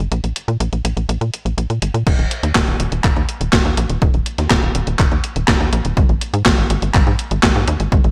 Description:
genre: italo disco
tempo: 123 BPM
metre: 4/4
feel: straight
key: unclear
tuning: A4 = 438 Hz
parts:
  - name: tight sequencer bass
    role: bass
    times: 0.0-8.1 s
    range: Eb1 to A#2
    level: -21 LUFS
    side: equal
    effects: tube saturation
  - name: gated 80s digital drum machine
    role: drums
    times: 0.1-8.1 s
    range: crash cymbal, handclaps, hi-hat, snare drum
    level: -22 LUFS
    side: equal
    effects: gated reverb, gated reverb snare
  - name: electronic kick drum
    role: drums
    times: 2.1-8.0 s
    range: none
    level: -19 LUFS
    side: equal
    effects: none
room: light reverb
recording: bright 1980s-style digital production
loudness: -17 LUFS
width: mono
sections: 0.0-2.1 A section; 2.1-8.1 B section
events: none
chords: none

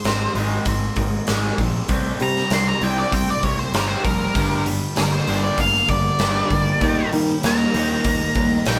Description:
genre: quiet-loud alternative rock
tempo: 98 BPM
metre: 4/4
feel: straight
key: G phrygian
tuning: A4 = 440 Hz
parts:
  - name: octave-fuzz lead guitar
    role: melody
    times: 0.0-8.8 s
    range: Bb4 to C6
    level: -25 LUFS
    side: equal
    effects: distortion
  - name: electric guitar through a small old amp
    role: arpeggios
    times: 0.0-8.8 s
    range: G2 to E4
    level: -32 LUFS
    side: equal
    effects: none
  - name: fuzz guitar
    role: riff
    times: 0.0-8.8 s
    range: G2 to Eb4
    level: -28 LUFS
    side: equal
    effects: distortion
  - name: picked electric bass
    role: bass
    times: 0.0-8.8 s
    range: F1 to Eb3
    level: -27 LUFS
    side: equal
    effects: none
  - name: big rock drum kit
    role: drums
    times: 0.0-8.8 s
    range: hi-hat, kick drum, snare drum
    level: -26 LUFS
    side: equal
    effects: none
  - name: thick fuzz guitar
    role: riff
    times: 4.4-8.8 s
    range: G2 to Bb3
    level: -28 LUFS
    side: equal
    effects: distortion
room: light reverb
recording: band playing live in one room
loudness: -20 LUFS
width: mono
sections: 0.0-8.8 A section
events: lead electric guitar solo 0.0-8.8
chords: 0.0 Ab; 1.9 C; 4.4 Gm; 6.8 Eb

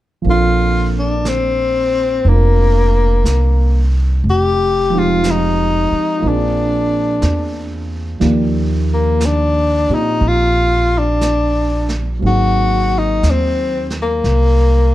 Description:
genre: jazz ballad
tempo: 60 BPM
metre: 4/4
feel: swing 68% on 8ths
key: Bb major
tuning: A4 = 440 Hz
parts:
  - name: warm concert grand piano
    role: accompaniment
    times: 0.2-14.9 s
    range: Eb3 to D5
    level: -22 LUFS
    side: right 3 dB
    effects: none
  - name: upright bass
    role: bass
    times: 0.2-14.9 s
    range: F1 to Bb2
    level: -16 LUFS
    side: equal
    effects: none
  - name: breathy tenor saxophone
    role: melody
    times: 0.3-14.9 s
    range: Bb3 to G4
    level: -16 LUFS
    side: left 2 dB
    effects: plate reverb
  - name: vintage brush drum kit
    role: drums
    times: 0.3-14.9 s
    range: brushed snare drum, hi-hat, snare drum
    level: -31 LUFS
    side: right 3 dB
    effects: none
room: light reverb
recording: dark, warm production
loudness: -13 LUFS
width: side -15 dB against mid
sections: 0.2-14.9 A section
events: none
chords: 0.2 Bbmaj7; 4.2 Fm7; 6.2 Bb9; 8.2 Ebmaj9; 12.2 Ab9

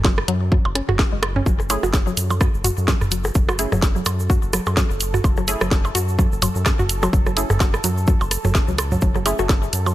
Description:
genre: minimal techno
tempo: 127 BPM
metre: 4/4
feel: swing 57% on 16ths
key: F# minor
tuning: A4 = 440 Hz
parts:
  - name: hollow square pluck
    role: riff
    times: 0.0-9.9 s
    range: F#3 to F#4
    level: -26 LUFS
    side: equal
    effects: chorus, sidechain pumping, tape echo
  - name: round analog bass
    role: bass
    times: 0.0-9.9 s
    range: F#1 to F#2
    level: -24 LUFS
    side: equal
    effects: sidechain pumping
  - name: electronic kick drum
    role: drums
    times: 0.0-9.6 s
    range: none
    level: -18 LUFS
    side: equal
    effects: none
  - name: house drum kit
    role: drums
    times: 0.0-9.8 s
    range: hi-hat, snare drum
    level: -24 LUFS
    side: equal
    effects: none
  - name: minimal click drum kit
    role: percussion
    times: 0.0-9.9 s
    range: percussion blips, rim click, toms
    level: -24 LUFS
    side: right 1 dB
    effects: overdrive, ping-pong delay
  - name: egg shaker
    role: percussion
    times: 1.5-9.9 s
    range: none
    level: -30 LUFS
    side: right 4 dB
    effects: none
  - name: bubbling stepped-filter texture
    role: texture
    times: 2.1-9.9 s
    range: A4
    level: -34 LUFS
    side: right 4 dB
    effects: chorus, built-in reverb, sidechain pumping
  - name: filtered dub chord stab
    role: stabs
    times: 1.7-9.4 s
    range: A3 to G#4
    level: -28 LUFS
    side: equal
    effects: analog chorus, ping-pong delay
room: little or no reverb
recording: none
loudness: -17 LUFS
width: side -15 dB against mid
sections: 0.0-9.9 A section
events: none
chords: 0.0 F#m

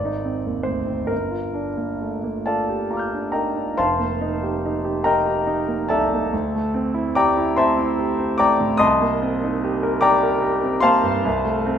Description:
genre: classical, impressionist solo piano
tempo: 42-50 BPM (dotted quarters)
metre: 6/8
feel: rubato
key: unclear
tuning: A4 = 436 Hz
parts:
  - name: clear concert grand piano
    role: solo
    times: 0.0-11.8 s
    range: F1 to G6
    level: -18 LUFS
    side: equal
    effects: none
room: moderate recital hall reverb, RT60 1.6 s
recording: none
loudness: -18 LUFS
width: side -8 dB against mid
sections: 0.0-3.8 A section; 3.8-11.8 B section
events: none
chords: 0.0 Ab; 1.1 Gm7; 3.8 F9sus4; 6.3 D9sus4; 8.8 Cm7; 11.3 D7(no3)/C (rootless)

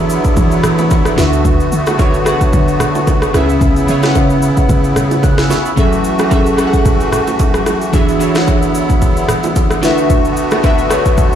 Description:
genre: amapiano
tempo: 111 BPM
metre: 4/4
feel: swing 55% on 16ths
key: unclear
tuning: A4 = 440 Hz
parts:
  - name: glassy digital keys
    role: accompaniment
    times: 0.0-11.4 s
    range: C#3 to F#6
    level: -15 LUFS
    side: equal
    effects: chorus
  - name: musette accordion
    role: sustained chords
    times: 0.0-11.4 s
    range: C#3 to F#4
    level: -18 LUFS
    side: left 1 dB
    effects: none
  - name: punchy sub bass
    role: bass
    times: 0.0-5.5 s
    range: C#2 to E3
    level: -16 LUFS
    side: equal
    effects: none
  - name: afro-pop drum kit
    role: drums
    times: 0.1-11.4 s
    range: kick drum, rim click, shaker, snare drum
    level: -14 LUFS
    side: equal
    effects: overdrive
  - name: congas and bongos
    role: percussion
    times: 0.4-11.3 s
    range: none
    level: -23 LUFS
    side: right 6 dB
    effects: none
room: light reverb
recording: played on a big sound system in a bare room, large studio reverb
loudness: -10 LUFS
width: side -9 dB against mid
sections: 0.0-11.4 A section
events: none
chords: 0.0 E7; 1.2 D6; 3.3 C#m7; 5.8 F#m9; 7.9 E7; 9.8 D6

